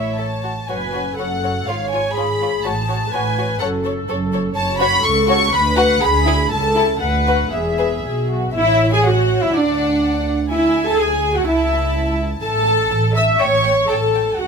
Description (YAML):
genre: quick classical-period movement for string orchestra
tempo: 123 BPM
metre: 2/4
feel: straight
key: F# minor, A major from 4.6 s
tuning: A4 = 440 Hz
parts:
  - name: warm symphonic violin section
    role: melody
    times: 0.0-14.5 s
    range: C#5 to C#6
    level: -22 LUFS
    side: left 2 dB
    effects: none
  - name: warm symphonic violin section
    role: second line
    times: 0.0-14.5 s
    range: E4 to E6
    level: -22 LUFS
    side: left 2 dB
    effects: none
  - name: rich studio viola section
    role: accompaniment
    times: 0.0-14.5 s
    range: D4 to E5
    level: -21 LUFS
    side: left 1 dB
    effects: none
  - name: dark symphonic double bass section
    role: bass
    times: 0.0-14.5 s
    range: E1 to D2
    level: -23 LUFS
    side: right 3 dB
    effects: none
  - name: warm symphonic cello section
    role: bass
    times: 0.0-14.5 s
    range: C#2 to E5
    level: -22 LUFS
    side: right 1 dB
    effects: none
room: light reverb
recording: close, detailed microphones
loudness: -15 LUFS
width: side -5 dB against mid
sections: 0.7-8.5 A section; 8.5-14.5 B section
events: none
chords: 0.0 A; 0.7 F#m; 1.7 C#7/G#; 2.6 F#m/A; 3.6 F#m; 5.5 Bm/D; 6.0 E7/D; 6.5 A/C#; 7.0 Bm/D; 7.5 E; 8.5 A; 9.5 D; 10.5 E7/D; 11.5 A/C#; 12.4 A5; 13.4 A7